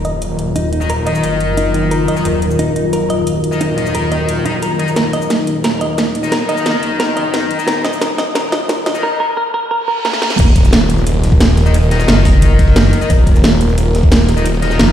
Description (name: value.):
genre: dark technical drum and bass.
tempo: 177 BPM.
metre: 4/4.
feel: straight.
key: Eb minor.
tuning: A4 = 440 Hz.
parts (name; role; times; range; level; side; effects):
dark analog pad; sustained chords; 0.0-14.9 s; Eb3 to Bb4; -19 LUFS; left 1 dB; chorus, sidechain pumping.
clean electric guitar; arpeggios; 0.0-10.3 s; Eb4 to Eb5; -20 LUFS; right 1 dB; sidechain pumping, low-pass filter, dub echo.
snarling distorted saw bass; bass; 0.0-14.8 s; Eb1 to Gb1; -18 LUFS; equal; distortion.
drum and bass drum kit; drums; 0.0-14.9 s; crash cymbal, hi-hat, shaker, snare drum; -18 LUFS; right 1 dB; none.
distorted electric guitar; stabs; 0.8-9.0, 11.7-14.9 s; Eb4 to Eb5; -21 LUFS; left 4 dB; distortion, vintage 12-bit sampler grit, low-pass filter, dub echo.
reverse cymbal and impact; sound effects; 9.9-11.7 s; none; -22 LUFS; right 1 dB; none.
breakbeat sampler-style drum kit; drums; 10.4-14.9 s; hi-hat, snare drum; -28 LUFS; equal; none.
electronic kick drum; drums; 10.4-14.1 s; none; -10 LUFS; equal; none.
growling FM bass; bass; 12.1-14.9 s; F1 to Gb1; -11 LUFS; equal; tube saturation.
room: moderate lush hall reverb, RT60 2.0 s.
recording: played on a big sound system in a bare room, stone room reverb, high-pass filter.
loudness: -12 LUFS.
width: side -10 dB against mid.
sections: 0.0-10.4 A section; 10.4-14.9 B section.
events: build-up 0.0-10.4; filter sweep on clean electric guitar 0.0-10.4; filter sweep 0.0-10.4; drum fill 5.0-9.0, 10.0-10.4; reverse cymbal 9.9-10.4; drop 10.4-14.9; impact 10.4-11.7.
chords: 0.0 Ebmadd9.